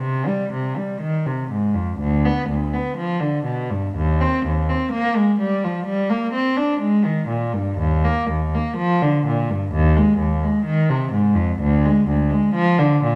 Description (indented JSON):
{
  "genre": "classical, baroque-style suite movement for unaccompanied cello",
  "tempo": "55-65 BPM",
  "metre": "4/4",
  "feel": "rubato",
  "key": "C minor, Eb major from 7.8 s",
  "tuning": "A4 = 440 Hz",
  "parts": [
    { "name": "rich cello", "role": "solo", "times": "0.0-13.2 s", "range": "D2 to D4", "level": "-20 LUFS", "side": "equal", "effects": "none" }
  ],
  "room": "moderate recital hall reverb, RT60 1.3 s",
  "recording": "none",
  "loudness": "-20 LUFS",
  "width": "mono",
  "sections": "0.0-13.2 A section",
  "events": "none",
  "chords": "none"
}